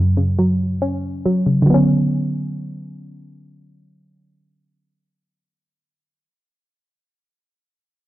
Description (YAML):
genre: hip hop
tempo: 139 BPM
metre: 4/4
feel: half-time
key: B minor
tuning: A4 = 440 Hz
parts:
  - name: soft round pluck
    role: accompaniment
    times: 0.0-6.4 s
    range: F#2 to C#4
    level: -16 LUFS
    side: equal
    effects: chorus, low-pass filter
room: light reverb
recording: dark, warm production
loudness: -16 LUFS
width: side -16 dB against mid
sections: 0.0-1.7 A section; 1.7-5.1 B section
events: filter sweep on synth pluck 0.0-1.7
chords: 0.0 F#5; 1.7 Bmadd9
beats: 0.39 0.82 1.25 | 1.68 2.11 2.54 2.98 | 3.41 3.84 4.27 4.70